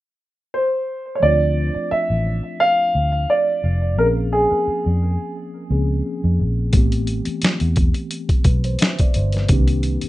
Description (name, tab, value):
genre	R&B, neo-soul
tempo	87 BPM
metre	4/4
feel	swing 54% on 16ths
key	D minor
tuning	A4 = 440 Hz
part	warm grand piano	melody	0.5-5.3 s	Ab4 to F5	-19 LUFS	right 1 dB	tape echo
part	mellow tine electric piano	accompaniment	1.2-10.1 s	Eb3 to E5	-26 LUFS	equal	medium stereo tremolo
part	vintage muted fingered electric bass	bass	1.2-10.1 s	F1 to F2	-19 LUFS	equal	none
part	boom bap sampler-style drum kit	drums	6.7-10.1 s	hi-hat, kick drum, snare drum	-17 LUFS	equal	none
room	moderate studio reverb, RT60 0.6 s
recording	rough home demo mix, nothing above 10.3 kHz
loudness	-17 LUFS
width	side -16 dB against mid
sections	0.0-1.2 A section; 1.2-10.1 B section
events	none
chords	0.0 N.C.; 1.2 Dm9; 4.0 Bbm9; 6.7 Am9; 9.5 Cm9